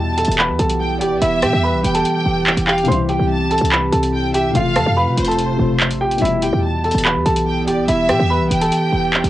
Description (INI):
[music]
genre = hip hop, drill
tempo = 144 BPM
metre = 4/4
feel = half-time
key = E phrygian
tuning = A4 = 440 Hz
[part]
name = rich studio violin section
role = second line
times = 0.0-9.3 s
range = C5 to A5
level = -24 LUFS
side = equal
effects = cassette tape, analog delay
[part]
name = felt-muted upright piano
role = accompaniment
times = 0.0-9.3 s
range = B2 to F4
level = -25 LUFS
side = left 6 dB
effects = low-pass filter, cassette tape
[part]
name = dark analog pad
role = sustained chords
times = 0.0-9.3 s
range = C3 to G4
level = -21 LUFS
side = right 1 dB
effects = chorus, cassette tape
[part]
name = short 808-style bass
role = bass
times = 0.0-9.3 s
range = D1 to C3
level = -21 LUFS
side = right 1 dB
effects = none
[part]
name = warm upright piano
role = melody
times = 0.2-9.3 s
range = E4 to C6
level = -20 LUFS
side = right 1 dB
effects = low-pass filter, cassette tape
[part]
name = drill drum kit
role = drums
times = 0.2-9.3 s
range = handclaps, hi-hat, rim click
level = -20 LUFS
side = right 1 dB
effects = vintage 12-bit sampler grit, cassette tape
[sound]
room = light reverb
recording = home recording on cassette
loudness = -14 LUFS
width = side -14 dB against mid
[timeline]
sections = 0.0-9.3 A section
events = none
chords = 0.0 Em; 2.9 C; 4.6 F; 6.2 Em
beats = 0.38 0.80 | 1.22 1.63 2.05 2.47 | 2.88 3.30 3.72 4.13 | 4.55 4.97 5.38 5.80 | 6.22 6.63 7.05 7.47 | 7.88 8.30 8.72 9.13